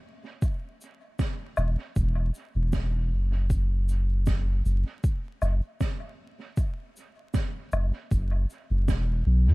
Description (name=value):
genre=ambient dub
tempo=78 BPM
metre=4/4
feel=swing 55% on 16ths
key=unclear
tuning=A4 = 439 Hz
part: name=cabasa, snare drum and woodblock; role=drums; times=0.4-9.1 s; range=none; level=-37 LUFS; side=right 2 dB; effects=dub echo
part: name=electronic kick drum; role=drums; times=0.4-9.1 s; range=none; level=-27 LUFS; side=equal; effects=none
part: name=soft dub sub bass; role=bass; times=1.6-9.5 s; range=E1 to F#2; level=-23 LUFS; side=equal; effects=none
room=little or no reverb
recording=dark, warm production, vinyl crackle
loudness=-25 LUFS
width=side -22 dB against mid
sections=0.0-9.5 A section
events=none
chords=none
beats=| 0.42 1.19 1.96 2.73 | 3.50 4.27 5.04 5.81 | 6.58 7.34 8.11 8.88